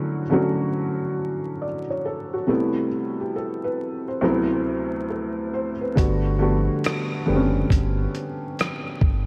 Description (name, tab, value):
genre	lo-fi hip hop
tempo	69 BPM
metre	4/4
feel	swing 64% on 16ths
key	D major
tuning	A4 = 441 Hz
part	felt-muted upright piano	accompaniment	0.0-9.3 s	D2 to D5	-25 LUFS	equal	cassette tape, low-pass filter
part	sub bass with octave	bass	6.0-9.3 s	F#1 to G1	-27 LUFS	equal	none
part	dusty soul sampler-style drum kit	drums	6.0-9.3 s	hi-hat, kick drum, rim click	-25 LUFS	equal	overdrive
room	moderate plate reverb, RT60 3.1 s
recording	dreamy mix soaked in reverb, vinyl crackle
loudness	-24 LUFS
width	mono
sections	0.0-9.3 A section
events	none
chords	0.0 Dmaj9; 2.5 Am7; 4.2 D13; 6.0 Gmaj9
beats	0.76 1.62 | 2.49 3.36 4.23 5.10 | 5.97 6.84 7.71 8.58